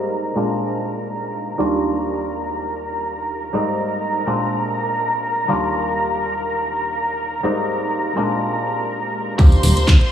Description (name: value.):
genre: filtered disco house.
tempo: 123 BPM.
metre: 4/4.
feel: swing 54% on 16ths.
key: Eb major.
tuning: A4 = 439 Hz.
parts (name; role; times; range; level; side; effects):
clav; accompaniment; 0.0-10.1 s; Eb2 to G4; -22 LUFS; equal; phaser, sidechain pumping, low-pass filter.
warm studio string section; sustained chords; 0.0-10.1 s; Bb4 to C6; -23 LUFS; equal; sidechain pumping, low-pass filter.
plucky analog bass; bass; 9.4-10.0 s; Eb1 to Eb2; -16 LUFS; equal; sidechain pumping, low-pass filter.
electronic kick drum; drums; 9.4-10.0 s; none; -10 LUFS; equal; small room ambience.
house drum kit; drums; 9.4-10.1 s; handclaps, hi-hat; -22 LUFS; right 1 dB; sidechain pumping on hats, small room ambience.
tambourine; percussion; 9.4-10.0 s; none; -29 LUFS; equal; sidechain pumping on perc, low-pass filter on perc.
room: wet huge ambient reverb, RT60 7.3 s.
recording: dreamy mix soaked in reverb, small room ambience.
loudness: -18 LUFS.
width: side -10 dB against mid.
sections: 0.0-9.4 A section.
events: filter sweep 0.0-9.4.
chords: 0.4 Bb7; 1.6 Ebmaj7; 3.5 Abmaj7; 4.3 Bb7; 5.5 Ebmaj7; 7.4 Abmaj7; 8.2 Bb7; 9.4 Ebmaj7.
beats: 0.12 0.61 1.10 | 1.59 2.08 2.56 3.05 | 3.54 4.03 4.51 5.00 | 5.49 5.98 6.46 6.95 | 7.44 7.93 8.42 8.90 | 9.39 9.88.